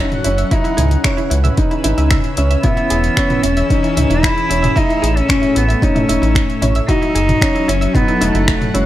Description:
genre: piano and strings electronica.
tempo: 113 BPM.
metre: 4/4.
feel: straight.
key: E major.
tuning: A4 = 442 Hz.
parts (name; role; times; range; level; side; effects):
warm cello; melody; 0.0-8.9 s; G#3 to E4; -19 LUFS; left 1 dB; none.
lush unison pad; sustained chords; 0.0-8.9 s; A2 to E6; -23 LUFS; left 1 dB; chorus, sidechain pumping.
analog pluck; arpeggios; 0.0-8.8 s; E4 to E5; -25 LUFS; right 2 dB; chorus, sidechain pumping, tape echo.
felt-muted upright piano; riff; 0.0-8.9 s; C#4 to F#4; -21 LUFS; equal; tape echo.
round analog bass; bass; 0.0-8.9 s; E1 to C#2; -16 LUFS; equal; sidechain pumping.
deep house drum kit; drums; 0.1-8.9 s; finger snaps, hi-hat, toms; -21 LUFS; equal; none.
electronic kick drum; drums; 0.5-8.6 s; none; -17 LUFS; equal; none.
room: light reverb, digital ambience.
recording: none.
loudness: -12 LUFS.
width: side -14 dB against mid.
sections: 0.0-8.9 A section.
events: none.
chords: 0.0 F#m; 0.5 C#m7; 2.6 E6; 4.8 A; 6.9 F#m.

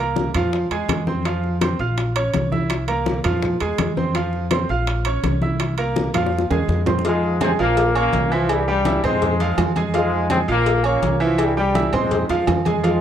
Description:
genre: latin, salsa.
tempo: 166 BPM.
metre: 4/4.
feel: straight.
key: F harmonic minor.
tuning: A4 = 440 Hz.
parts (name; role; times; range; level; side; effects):
bright baby grand piano; accompaniment; 0.0-13.0 s; E3 to F6; -22 LUFS; right 3 dB; none.
upright bass; bass; 0.0-13.0 s; Bb1 to F2; -24 LUFS; equal; none.
bongos and cowbell; percussion; 0.2-13.0 s; none; -28 LUFS; left 7 dB; none.
congas; percussion; 0.2-13.0 s; none; -26 LUFS; left 1 dB; none.
timbales and agogo bells; percussion; 0.3-13.0 s; none; -28 LUFS; right 8 dB; none.
bright trombone section; melody; 7.1-13.0 s; G2 to F4; -22 LUFS; left 2 dB; none.
room: studio reverb.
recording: dry, close 1970s-style studio recording.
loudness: -17 LUFS.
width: side -9 dB against mid.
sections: 0.0-7.0 A section; 7.0-13.0 B section.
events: drum fill 6.1-7.0.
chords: 0.0 C7(no3); 0.5 Fm; 2.0 Bbm; 2.7 C7; 3.4 Fm; 4.9 Bbm; 5.6 C7; 6.3 Fm; 7.8 Bbm; 8.5 C; 9.2 Fm; 10.7 Bbm; 11.4 C; 12.1 Fm.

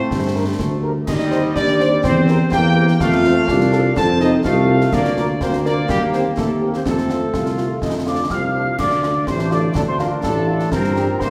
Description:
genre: military-style march for wind band.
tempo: 124 BPM.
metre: 2/4.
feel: straight.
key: unclear.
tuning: A4 = 441 Hz.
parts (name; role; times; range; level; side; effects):
dark trumpet section; melody; 0.0-11.3 s; G4 to A5; -26 LUFS; equal; none.
warm euphonium; second line; 0.0-11.3 s; A2 to A4; -26 LUFS; equal; none.
bright trombone section; sustained chords; 0.0-11.3 s; G3 to F4; -27 LUFS; equal; none.
mellow tuba; bass; 0.0-11.3 s; A1 to G2; -21 LUFS; equal; none.
concert snare drum, concert bass drum and clash cymbals; drums; 0.1-11.3 s; none; -28 LUFS; equal; none.
mellow French horn section; accompaniment; 0.4-11.0 s; G3 to C5; -30 LUFS; equal; none.
mellow hollow wooden piccolo; second line; 8.1-11.3 s; A5 to F6; -26 LUFS; equal; none.
room: wet recital hall reverb, RT60 1.8 s.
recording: heard from further back in the room.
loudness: -18 LUFS.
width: mono.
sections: 0.0-8.8 A section; 8.8-11.3 A section.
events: none.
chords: 0.1 Gm; 1.1 Cm/Eb; 2.0 C7/E; 3.0 F; 4.9 Bb/D; 5.9 Cm7/Eb; 6.9 F; 8.8 Dm; 10.7 Gm.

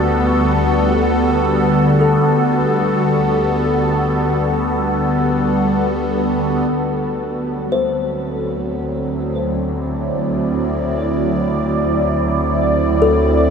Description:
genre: ambient.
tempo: free time.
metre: none.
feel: none.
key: D mixolydian.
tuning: A4 = 442 Hz.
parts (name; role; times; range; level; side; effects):
evolving wavetable pad; sustained chords; 0.0-13.5 s; F#3 to D5; -17 LUFS; equal; phaser, built-in reverb, shimmer reverb.
kalimba; arpeggios; 0.0-13.5 s; F#4 to C5; -24 LUFS; left 3 dB; diffuse ambient delay, shimmer reverb.
clear studio double bass section; bass; 0.0-13.5 s; D2; -22 LUFS; equal; none.
organ-like drone; drone; 0.0-6.8 s; D3; -21 LUFS; left 2 dB; ensemble chorus, built-in reverb.
room: wet huge ambient reverb, RT60 8.1 s.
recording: in a vast, echoing space.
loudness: -15 LUFS.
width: side -6 dB against mid.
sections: 0.0-6.7 A section; 6.7-13.5 B section.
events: none.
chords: 0.0 Gmaj9/D; 6.7 D9.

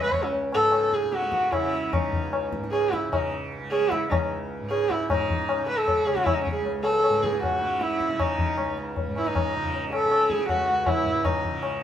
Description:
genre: indian classical, Hindustani.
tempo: 154 BPM.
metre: 4/4.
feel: straight.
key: C# raga darbari.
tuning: A4 = 439 Hz.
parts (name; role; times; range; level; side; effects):
dark sarangi; melody; 0.0-11.8 s; C#4 to C#5; -24 LUFS; right 1 dB; none.
tanpura; drone; 0.0-11.8 s; C#2 to C#3; -33 LUFS; right 1 dB; none.
tabla; percussion; 0.1-11.8 s; none; -28 LUFS; left 4 dB; none.
room: wet studio reverb, RT60 0.5 s.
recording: heard from further back in the room.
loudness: -22 LUFS.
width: side -10 dB against mid.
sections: 0.0-5.1 A section; 5.1-11.8 B section.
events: speeding up 0.0-11.8.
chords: none.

